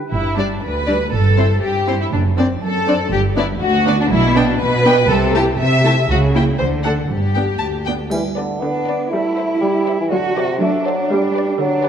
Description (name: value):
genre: cinematic, playful, whimsical film cue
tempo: 121 BPM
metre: 2/4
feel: straight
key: G major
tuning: A4 = 440 Hz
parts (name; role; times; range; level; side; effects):
- rich symphonic violin section; second line; 0.1-11.9 s; B3 to E5; -19 LUFS; left 2 dB; none
- rich chamber double bass section; bass; 0.1-7.5 s; F#1 to D2; -22 LUFS; right 3 dB; none
- warm chamber cello section; bass; 0.1-11.9 s; D2 to F#4; -19 LUFS; right 1 dB; none
- rich chamber violin section; melody; 0.4-11.9 s; C5 to A5; -27 LUFS; left 4 dB; none
- warm chamber viola section; accompaniment; 0.4-11.9 s; D3 to E4; -23 LUFS; right 1 dB; none
- mellow bassoon; accompaniment; 8.1-11.9 s; C3 to B3; -20 LUFS; right 1 dB; none
- triangle; percussion; 8.1-9.1 s; none; -36 LUFS; left 2 dB; none
room: moderate scoring stage reverb, RT60 2.1 s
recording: dark, warm production, lossy compression artefacts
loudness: -14 LUFS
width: side -8 dB against mid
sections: 0.1-8.1 A section; 8.1-11.9 A section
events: none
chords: 0.1 G; 1.1 Am7/G; 2.1 D7/F#; 3.1 G; 4.1 G/B (rootless); 5.1 Am/C; 6.1 C#m6; 6.6 D5; 7.1 G; 9.1 Am7/G; 10.1 D7; 11.1 G